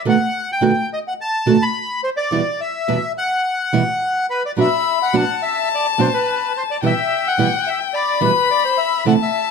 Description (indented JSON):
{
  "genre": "tango",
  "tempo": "107 BPM",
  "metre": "4/4",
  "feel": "rubato",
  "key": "E minor",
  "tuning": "A4 = 440 Hz",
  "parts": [
    { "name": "bandoneon", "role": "melody", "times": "0.0-9.5 s", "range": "B4 to B5", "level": "-20 LUFS", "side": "left 1 dB", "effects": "none" },
    { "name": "nylon-string guitar", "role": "accompaniment", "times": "0.1-9.2 s", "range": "E2 to F#4", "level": "-17 LUFS", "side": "right 5 dB", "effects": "none" },
    { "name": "warm violin", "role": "second line", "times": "4.6-9.5 s", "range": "G5 to B5", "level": "-19 LUFS", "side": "left 12 dB", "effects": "none" }
  ],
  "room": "moderate large studio reverb, RT60 0.9 s",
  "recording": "none",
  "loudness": "-16 LUFS",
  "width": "side -5 dB against mid",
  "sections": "0.0-9.5 A section",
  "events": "none",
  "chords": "0.1 B7; 2.3 Em; 4.6 Bm; 6.8 Em/B"
}